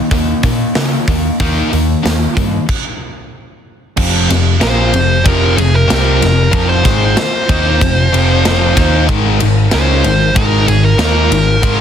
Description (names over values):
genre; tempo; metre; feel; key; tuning
hard rock; 94 BPM; 4/4; straight; F minor; A4 = 440 Hz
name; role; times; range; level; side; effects
sludgy distorted guitar; riff; 0.0-11.8 s; F2 to Eb4; -18 LUFS; right 11 dB; overdrive
tight distorted guitar; riff; 0.0-11.8 s; F2 to Eb4; -17 LUFS; left 11 dB; distortion
hollow-body short-scale picked electric bass; bass; 0.1-11.8 s; F1 to Db3; -15 LUFS; equal; none
tight metal drum kit; drums; 0.1-11.8 s; crash cymbal, hi-hat, kick drum, ride cymbal, snare drum; -16 LUFS; equal; soft clipping on kick
tonewheel organ; sustained chords; 4.0-11.8 s; F3 to Bb4; -26 LUFS; equal; none
dark smooth lead guitar; melody; 4.6-11.8 s; Ab4 to C5; -16 LUFS; right 2 dB; overdrive
room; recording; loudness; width
light reverb; dense, heavily limited modern master; -10 LUFS; side -8 dB against mid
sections
0.0-4.0 A section; 4.0-11.8 B section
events
stop 2.7-4.0; lead electric guitar solo 4.0-11.8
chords
0.0 Eb5; 4.0 Fm; 9.1 Ab5